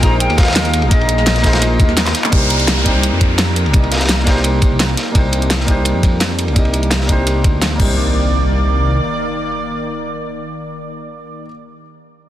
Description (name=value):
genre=liquid drum and bass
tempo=170 BPM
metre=4/4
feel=straight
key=C minor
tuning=A4 = 445 Hz
part: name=mellow silver concert flute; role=melody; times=0.0-1.9 s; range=Eb5 to Bb5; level=-22 LUFS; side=left 2 dB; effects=digital delay
part: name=warm concert grand piano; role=accompaniment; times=0.0-12.3 s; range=Bb3 to Eb5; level=-21 LUFS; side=equal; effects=low-pass filter, digital delay
part: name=lush unison pad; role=sustained chords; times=0.0-11.4 s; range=Eb3 to D5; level=-24 LUFS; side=right 1 dB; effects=chorus, sidechain pumping
part: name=dark detuned saw bass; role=bass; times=0.0-9.0 s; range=Bb1 to F2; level=-17 LUFS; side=equal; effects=none
part: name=crunchy breakbeat drum kit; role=drums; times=0.0-7.7 s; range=ride cymbal, snare drum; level=-23 LUFS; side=equal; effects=high-pass filter on cymbals, high-pass filter on snare, high-pass filter on room
part: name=electronic kick drum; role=drums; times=0.0-7.9 s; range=none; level=-14 LUFS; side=equal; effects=none
part: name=pop drum kit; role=drums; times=0.0-7.9 s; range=crash cymbal, handclaps, hi-hat, snare drum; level=-20 LUFS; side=equal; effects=none
part: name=downlifter and impact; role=sound effects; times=2.3-5.2, 7.8-11.5 s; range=none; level=-24 LUFS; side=equal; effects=none
room=little or no reverb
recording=dense, heavily limited modern master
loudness=-12 LUFS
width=side -12 dB against mid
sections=0.0-2.3 A section; 2.3-8.0 B section; 8.0-10.8 C section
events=drop 0.0-2.3; drum fill 2.1; filter sweep on analog synth pad 2.3-8.0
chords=0.0 Bb7sus4; 2.3 Cm9